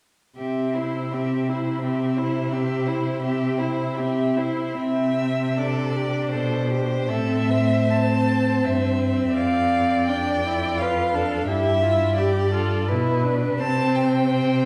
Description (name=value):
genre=classical, slow romantic movement for string quartet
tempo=71-88 BPM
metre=3/4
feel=rubato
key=C major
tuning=A4 = 440 Hz
part: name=clear violin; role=melody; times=0.4-14.7 s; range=C5 to A5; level=-29 LUFS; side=equal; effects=none
part: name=warm violin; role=second line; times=0.4-14.7 s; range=E4 to D5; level=-30 LUFS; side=equal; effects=none
part: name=rich viola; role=accompaniment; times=0.4-14.7 s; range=C4 to G4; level=-27 LUFS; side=equal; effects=none
part: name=rich cello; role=bass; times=0.4-14.7 s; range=F2 to C3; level=-28 LUFS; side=equal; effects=none
room=wet recital hall reverb, RT60 1.4 s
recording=heard from further back in the room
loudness=-22 LUFS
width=mono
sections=0.4-4.8 A section; 4.8-14.7 B section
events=none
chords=0.4 C; 7.1 Am; 9.4 Dm/F; 11.5 G6; 13.6 C5